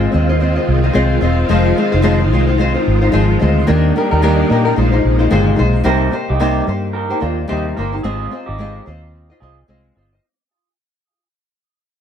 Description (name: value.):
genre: indie pop, bedroom pop.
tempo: 110 BPM.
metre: 4/4.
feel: swing 60% on 16ths.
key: unclear.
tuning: A4 = 438 Hz.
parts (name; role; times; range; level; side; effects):
nylon-string guitar; accompaniment; 0.0-10.2 s; Bb2 to Eb5; -16 LUFS; left 2 dB; wide subtle chorus, vibrato effect, plate reverb.
string machine, full ensemble; sustained chords; 0.0-5.9 s; C3 to F4; -20 LUFS; right 1 dB; ensemble chorus, plate reverb.
vintage muted fingered electric bass; bass; 0.0-10.2 s; Fb1 to Bb2; -16 LUFS; equal; none.
electric guitar through a small old amp; second line; 5.9-9.6 s; D4 to Bb4; -23 LUFS; right 6 dB; wide subtle chorus, tape echo, plate reverb.
room: light reverb.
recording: none.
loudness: -12 LUFS.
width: side -8 dB against mid.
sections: 0.0-5.9 A section; 5.9-10.2 B section.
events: fade-out 5.9-10.2.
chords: 0.0 Ab6; 1.5 Fm7; 3.7 Ebmaj7; 4.8 Bb9sus4; 5.9 Cm7; 8.0 Ab6.